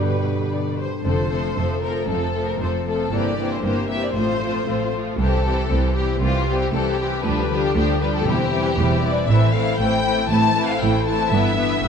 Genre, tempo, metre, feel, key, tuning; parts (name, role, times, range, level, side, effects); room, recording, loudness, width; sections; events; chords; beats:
classical, dramatic, fast romantic movement for symphony orchestra; 117 BPM; 4/4; straight; F major; A4 = 440 Hz
warm symphonic violin section; melody; 0.0-11.9 s; F4 to A5; -25 LUFS; left 5 dB
warm symphonic violin section; second line; 0.0-11.9 s; B3 to B4; -26 LUFS; left 3 dB
rich symphonic viola section; accompaniment; 0.0-11.9 s; E3 to G4; -27 LUFS; right 1 dB
warm bassoon; accompaniment; 0.0-0.5 s; G3; -32 LUFS; left 1 dB
mellow French horn section; sustained chords; 0.0-0.5 s; D3; -36 LUFS; left 4 dB
concert harp; arpeggios; 0.0-11.9 s; F2 to E5; -27 LUFS; left 7 dB
rich chamber double bass section; bass; 0.0-11.9 s; E1 to G2; -25 LUFS; right 3 dB
rich studio cello section; bass; 0.0-11.9 s; C2 to B2; -26 LUFS; right 3 dB
moderate scoring stage reverb, RT60 1.9 s; dark, warm production; -18 LUFS; side -6 dB against mid
0.0-1.0 A section; 1.0-11.9 B section
0.0 G; 1.0 F; 3.1 C7/G; 4.1 F/A; 5.2 C; 7.2 G7/D; 8.3 C/E; 9.3 Am; 11.3 Em/G
0.50 | 1.04 1.57 2.09 2.61 | 3.12 3.63 4.15 4.67 | 5.18 5.70 6.21 6.73 | 7.24 7.75 8.27 8.78 | 9.29 9.79 10.30 10.82 | 11.32 11.84